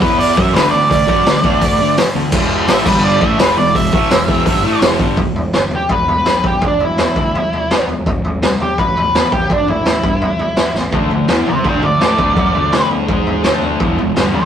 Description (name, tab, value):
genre	garage rock duo or trio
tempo	167 BPM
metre	4/4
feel	straight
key	unclear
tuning	A4 = 440 Hz
part	octave-fuzz lead guitar	melody	0.0-14.5 s	D4 to G5	-16 LUFS	right 1 dB	distortion
part	thick fuzz guitar	riff	0.0-5.2, 10.9-14.4 s	E2 to A4	-17 LUFS	equal	distortion
part	fuzz picked electric bass	bass	0.0-14.4 s	E1 to A2	-22 LUFS	left 1 dB	overdrive
part	raw garage drum kit	drums	0.0-14.4 s	crash cymbal, hi-hat, kick drum, snare drum, toms	-15 LUFS	equal	none
room	moderate stone room reverb, RT60 1.0 s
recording	rough rehearsal-room recording, tube saturation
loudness	-12 LUFS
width	side -9 dB against mid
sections	0.0-5.2 A section; 5.2-14.5 B section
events	lead electric guitar solo 0.0-5.2; drum fill 10.7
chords	0.0 E5; 0.4 D5; 2.3 E5; 2.9 G5; 3.2 E5; 8.1 A5; 10.9 D5; 13.1 G#5; 13.4 D5; 13.8 E5